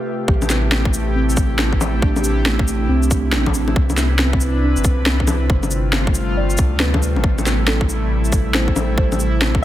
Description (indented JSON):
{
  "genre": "future garage",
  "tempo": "138 BPM",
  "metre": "4/4",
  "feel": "swing 63% on 16ths",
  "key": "A minor",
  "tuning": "A4 = 440 Hz",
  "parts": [
    { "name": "muted felt-like synth keys", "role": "accompaniment", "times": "0.0-9.6 s", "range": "A3 to D5", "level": "-26 LUFS", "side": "right 2 dB", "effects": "chorus, sidechain pumping, digital delay" },
    { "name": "airy breathy pad", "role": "sustained chords", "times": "0.0-9.6 s", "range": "C3 to B4", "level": "-24 LUFS", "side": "equal", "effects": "chorus, sidechain pumping" },
    { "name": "warm sub bass", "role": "bass", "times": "0.3-9.6 s", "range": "G1 to D2", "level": "-19 LUFS", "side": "equal", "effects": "tube saturation, sidechain pumping" },
    { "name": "electronic kick drum", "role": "drums", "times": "0.3-9.6 s", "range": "none", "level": "-19 LUFS", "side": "equal", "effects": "overdrive" },
    { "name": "electronic bongos, shaker and snare drum", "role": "drums", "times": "0.4-9.5 s", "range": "none", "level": "-21 LUFS", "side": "left 1 dB", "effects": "overdrive" }
  ],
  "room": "light reverb",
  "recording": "none",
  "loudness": "-15 LUFS",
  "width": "side -13 dB against mid",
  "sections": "0.3-9.6 A section",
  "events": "none",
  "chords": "0.3 Am7; 3.8 Cmaj9; 5.5 G9sus4; 7.2 Am7"
}